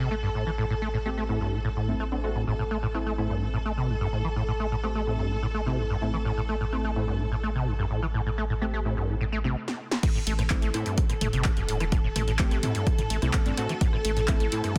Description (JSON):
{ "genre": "acid house", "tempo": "127 BPM", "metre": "4/4", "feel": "straight", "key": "A minor", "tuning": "A4 = 436 Hz", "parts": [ { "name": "rich studio string section", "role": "sustained chords", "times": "0.0-14.8 s", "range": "A4", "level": "-38 LUFS", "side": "equal", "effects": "sidechain pumping, low-pass filter" }, { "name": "acid bass, saw", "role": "riff", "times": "0.0-14.8 s", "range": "G2 to C4", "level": "-32 LUFS", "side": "equal", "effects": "overdrive, ensemble chorus, vintage 12-bit sampler grit, sidechain pumping, dub echo" }, { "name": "round analog bass", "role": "bass", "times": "0.0-14.5 s", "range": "E1 to C2", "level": "-33 LUFS", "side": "equal", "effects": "sidechain pumping" }, { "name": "deep mellow chord stab", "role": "stabs", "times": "1.1-14.7 s", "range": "A3 to G4", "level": "-37 LUFS", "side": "equal", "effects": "chorus, dub echo" }, { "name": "punchy analog drum machine", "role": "drums", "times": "9.7-14.8 s", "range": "crash cymbal, handclaps, hi-hat, rim click, snare drum, toms", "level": "-34 LUFS", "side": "equal", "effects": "overdrive" }, { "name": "electronic kick drum", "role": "drums", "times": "10.0-14.8 s", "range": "none", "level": "-28 LUFS", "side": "equal", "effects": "overdrive" } ], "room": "light reverb", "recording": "dense, heavily limited modern master", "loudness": "-27 LUFS", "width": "mono", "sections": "0.0-10.0 A section; 10.0-14.8 B section", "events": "stop 9.6-10.0; drum fill 9.7-10.0; drop 10.0-14.8", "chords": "0.0 Am", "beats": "0.11 | 0.58 1.05 1.53 2.00 | 2.47 2.94 3.42 3.89 | 4.36 4.83 5.31 5.78 | 6.25 6.72 7.20 7.67 | 8.14 8.62 9.09 9.56 | 10.03 10.50 10.98 11.45 | 11.92 12.39 12.87 13.34 | 13.81 14.28 14.76" }